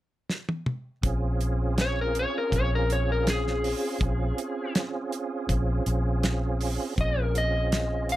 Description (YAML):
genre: straight-eighth soul blues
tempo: 81 BPM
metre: 4/4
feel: straight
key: Bb minor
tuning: A4 = 440 Hz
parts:
  - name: damped 70s drum kit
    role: drums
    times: 0.3-8.2 s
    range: hi-hat, kick drum, snare drum, toms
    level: -29 LUFS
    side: equal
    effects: none
  - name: tonewheel organ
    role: accompaniment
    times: 1.0-8.2 s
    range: C4 to Ab4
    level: -31 LUFS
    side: right 4 dB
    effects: slow rotary speaker, overdrive, chorus vibrato, plate reverb
  - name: vintage muted fingered electric bass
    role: bass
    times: 1.0-8.2 s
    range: Bb1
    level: -27 LUFS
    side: equal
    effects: none
  - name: electric slide guitar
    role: melody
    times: 1.8-8.2 s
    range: Ab4 to F5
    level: -28 LUFS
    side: left 2 dB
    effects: plate reverb
room: light reverb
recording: none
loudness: -25 LUFS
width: side -15 dB against mid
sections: 0.0-1.0 A section; 1.0-8.2 B section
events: drum fill 0.3-1.0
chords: 0.0 N.C.; 1.0 Bbm7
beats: 0.29 | 1.03 1.78 2.52 3.26 | 4.00 4.75 5.49 6.23 | 6.97 7.72